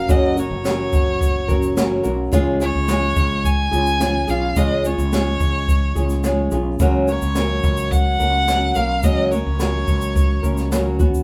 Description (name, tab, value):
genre	acoustic pop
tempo	107 BPM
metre	4/4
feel	straight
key	F# major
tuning	A4 = 439 Hz
part	rich violin	melody	0.0-11.0 s	C#5 to G#5	-26 LUFS	equal	none
part	flamenco guitar	accompaniment	0.0-11.2 s	F#2 to A#4	-24 LUFS	equal	none
part	mellow fretless electric bass	bass	0.0-11.2 s	F#1 to D#2	-25 LUFS	equal	none
part	jazz brush drum kit	drums	0.1-11.2 s	kick drum, shaker, snare drum	-23 LUFS	equal	none
room	moderate large studio reverb, RT60 0.9 s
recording	band playing live in one room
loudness	-19 LUFS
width	mono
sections	0.0-11.2 A section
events	none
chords	0.0 F#; 2.3 C#; 6.8 F#